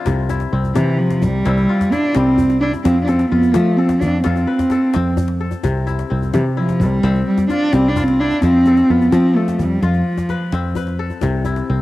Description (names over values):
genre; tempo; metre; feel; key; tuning
west african traditional, West African string and xylophone music; 86 BPM (dotted quarters); 12/8; straight; C major; A4 = 441 Hz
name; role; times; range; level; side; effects
kora; arpeggios; 0.0-11.8 s; C3 to B4; -24 LUFS; left 6 dB; cassette tape
fingered electric bass; bass; 0.1-11.8 s; C2 to F3; -18 LUFS; equal; none
djembe; percussion; 0.1-11.7 s; none; -27 LUFS; left 3 dB; none
dark cello; melody; 0.8-11.0 s; E3 to D4; -16 LUFS; right 1 dB; cassette tape
room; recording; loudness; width
studio reverb; home recording on cassette; -14 LUFS; side -17 dB against mid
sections
0.0-5.6 A section; 5.6-11.8 A section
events
none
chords
0.1 C; 2.9 F; 5.6 C; 8.4 F; 11.2 C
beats
| 0.07 0.76 1.46 2.16 | 2.85 3.55 4.25 4.95 | 5.64 6.34 7.04 7.73 | 8.43 9.13 9.83 10.53 | 11.23